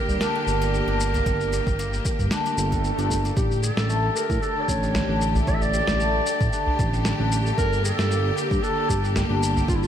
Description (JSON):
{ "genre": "organic downtempo", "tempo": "114 BPM", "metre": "4/4", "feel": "swing 54% on 16ths", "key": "unclear", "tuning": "A4 = 441 Hz", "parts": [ { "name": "dark clarinet", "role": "melody", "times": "0.0-9.9 s", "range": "E4 to E5", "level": "-27 LUFS", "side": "right 1 dB", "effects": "diffuse ambient delay" }, { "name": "clear symphonic string section", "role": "sustained chords", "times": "0.0-9.9 s", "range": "D3 to G4", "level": "-30 LUFS", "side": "equal", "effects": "sidechain pumping" }, { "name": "guzheng", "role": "arpeggios", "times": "0.0-9.9 s", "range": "G3 to Bb4", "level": "-29 LUFS", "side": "left 3 dB", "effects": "low-pass filter, analog delay" }, { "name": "smooth synth bass", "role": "bass", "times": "0.1-9.9 s", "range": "G1 to A2", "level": "-25 LUFS", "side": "right 1 dB", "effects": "none" }, { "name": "electronic shaker and snare drum", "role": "drums", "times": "0.1-9.9 s", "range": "none", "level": "-31 LUFS", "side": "equal", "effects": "none" }, { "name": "udu", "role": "percussion", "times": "0.1-9.7 s", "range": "none", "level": "-29 LUFS", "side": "equal", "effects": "none" }, { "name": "electronic kick drum", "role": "drums", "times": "1.3-9.8 s", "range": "none", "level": "-27 LUFS", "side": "equal", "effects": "overdrive" }, { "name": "swell", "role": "sound effects", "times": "2.5-3.4 s", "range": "none", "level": "-34 LUFS", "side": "right 1 dB", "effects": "none" } ], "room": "moderate lush hall reverb, RT60 1.7 s, small room ambience", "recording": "dreamy mix soaked in reverb", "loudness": "-20 LUFS", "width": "side -9 dB against mid", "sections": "0.0-3.4 A section; 3.4-9.9 A section", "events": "swell 2.5-3.4; filter sweep on guzheng 3.4-9.9", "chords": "0.0 Gm; 3.4 A7sus4; 7.6 Gm", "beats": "0.21 0.74 | 1.26 1.79 2.31 2.84 | 3.37 3.89 4.42 4.95 | 5.47 6.00 6.53 7.05 | 7.58 8.11 8.63 9.16 | 9.68" }